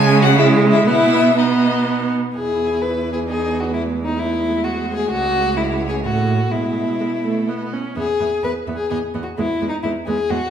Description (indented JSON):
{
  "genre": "quick classical-period movement for string quartet",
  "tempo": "120-132 BPM",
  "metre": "3/4",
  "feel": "rubato",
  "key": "E major",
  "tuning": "A4 = 440 Hz",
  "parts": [
    { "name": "rich violin", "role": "melody", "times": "0.0-10.4 s", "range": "B4 to G#5", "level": "-25 LUFS", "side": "left 6 dB", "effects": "none" },
    { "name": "warm viola", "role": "accompaniment", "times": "0.0-10.4 s", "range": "G#3 to E4", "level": "-22 LUFS", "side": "right 2 dB", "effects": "none" },
    { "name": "clear cello", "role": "bass", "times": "0.0-10.4 s", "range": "C#2 to C#3", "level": "-21 LUFS", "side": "right 4 dB", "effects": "none" },
    { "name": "rich violin", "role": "second line", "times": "0.2-10.5 s", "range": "D#4 to B4", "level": "-21 LUFS", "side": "left 2 dB", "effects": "none" }
  ],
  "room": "wet recital hall reverb, RT60 1.5 s",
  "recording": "heard from further back in the room",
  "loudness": "-16 LUFS",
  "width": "side -8 dB against mid",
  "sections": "0.0-2.4 A section; 2.4-10.5 A section",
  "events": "none",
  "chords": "0.0 C#5; 0.9 B; 2.4 E; 3.3 B/E; 3.7 E; 5.1 C#5; 6.0 F#m/A; 6.5 E/B; 7.5 B; 8.0 E"
}